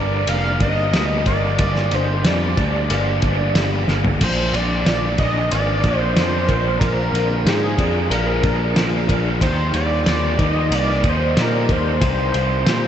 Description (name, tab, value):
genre	psychedelic rock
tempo	92 BPM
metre	4/4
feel	straight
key	C minor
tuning	A4 = 440 Hz
part	fat analog lead	melody	0.0-12.9 s	Ab4 to F5	-22 LUFS	equal	analog delay
part	raw garage guitar	riff	0.0-12.9 s	G2 to Eb4	-23 LUFS	equal	overdrive, rotary speaker
part	overdriven picked electric bass	bass	0.0-12.9 s	F1 to Bb2	-21 LUFS	equal	none
part	cloth-damped thuddy drum kit	drums	0.3-12.8 s	crash cymbal, kick drum, ride cymbal, snare drum, toms	-21 LUFS	equal	none
room	moderate huge ambient reverb, RT60 7.7 s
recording	dreamy mix soaked in reverb, nothing above 8.0 kHz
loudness	-16 LUFS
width	side -9 dB against mid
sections	0.0-12.9 A section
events	drum fill 3.9-4.2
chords	0.0 Gm; 4.2 Bb; 9.4 Cm